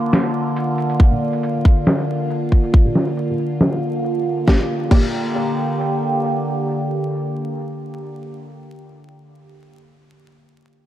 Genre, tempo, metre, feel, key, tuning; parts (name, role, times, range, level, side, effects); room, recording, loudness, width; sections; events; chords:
deep dubstep; 138 BPM; 4/4; swing 53% on 16ths, half-time; G minor; A4 = 439 Hz
overtone-sweeping drone; sustained chords; 0.0-8.2 s; D3 to G4; -21 LUFS; equal; chorus, built-in reverb
trip hop sampler-style drum kit; drums; 0.1-5.0 s; crash cymbal, hi-hat, snare drum; -20 LUFS; equal; low-pass filter on snare, low-pass filter on hats, low-pass filter on cymbals
electronic kick drum; drums; 1.0-5.0 s; -12 LUFS; equal; overdrive
filtered dub chord stab; stabs; 1.1-8.7 s; Bb3 to D5; -25 LUFS; equal; phaser, lush chorus, cassette tape, dub echo
moderate lush hall reverb, RT60 2.3 s; dark, warm production, vinyl crackle; -16 LUFS; side -12 dB against mid
0.0-4.5 A section; 4.5-8.0 B section
filter sweep on drum 0.0-4.5; filter sweep on synth stab 0.0-4.5
0.0 Gm (rootless); 4.5 Gm